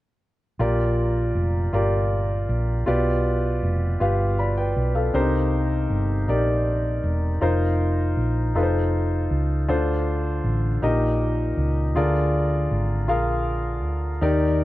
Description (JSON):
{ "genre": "gospel", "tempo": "53 BPM (dotted quarters)", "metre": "6/8", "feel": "straight", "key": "Bb major", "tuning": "A4 = 438 Hz", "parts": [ { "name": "clear grand piano", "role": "accompaniment", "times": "0.6-14.6 s", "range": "Bb2 to B5", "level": "-23 LUFS", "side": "left 1 dB", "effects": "none" }, { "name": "hollow-body short-scale fingered electric bass", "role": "bass", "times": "0.6-14.6 s", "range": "E1 to Eb2", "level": "-23 LUFS", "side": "equal", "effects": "none" } ], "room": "light reverb, small room ambience", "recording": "dark, warm production", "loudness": "-20 LUFS", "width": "side -16 dB against mid", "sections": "0.6-14.6 A section", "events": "none", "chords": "0.6 Bb6; 2.9 G7; 5.1 Cm7; 7.4 F7sus4; 8.6 F7; 9.7 Dm7; 10.8 Eb/Bb; 12.0 Bb7", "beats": "| 0.60 1.73 | 2.87 4.01 | 5.15 6.28 | 7.42 8.55 | 9.69 10.82 | 11.96 13.09 | 14.22" }